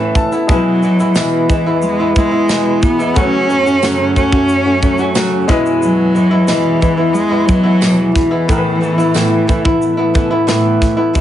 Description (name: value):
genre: acoustic pop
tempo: 90 BPM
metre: 4/4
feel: straight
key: E major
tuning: A4 = 440 Hz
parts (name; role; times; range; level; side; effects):
- warm cello; melody; 0.0-11.2 s; E3 to C#4; -15 LUFS; equal; none
- bright upright piano; accompaniment; 0.0-11.2 s; G#3 to A5; -24 LUFS; left 4 dB; none
- flamenco guitar; accompaniment; 0.0-11.2 s; E2 to F#4; -15 LUFS; equal; none
- modern studio drum kit; drums; 0.2-11.2 s; kick drum, shaker, snare drum; -16 LUFS; equal; none
- glassy FM pad; sustained chords; 1.1-11.1 s; E2 to E5; -24 LUFS; equal; ensemble chorus, built-in reverb
- tambourine; percussion; 1.2-10.6 s; none; -28 LUFS; right 8 dB; none
room: moderate studio ambience, RT60 0.5 s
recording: heavily compressed radio sound, multiband compression, nothing above 10.8 kHz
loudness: -11 LUFS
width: side -11 dB against mid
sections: 0.0-11.2 A section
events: upright piano fill 0.0-0.5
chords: 0.5 E; 3.2 F#m; 5.5 E; 8.5 Asus2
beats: | 0.48 1.15 1.82 2.49 | 3.15 3.82 4.49 5.16 | 5.82 6.49 7.16 7.82 | 8.49 9.16 9.82 10.49 | 11.16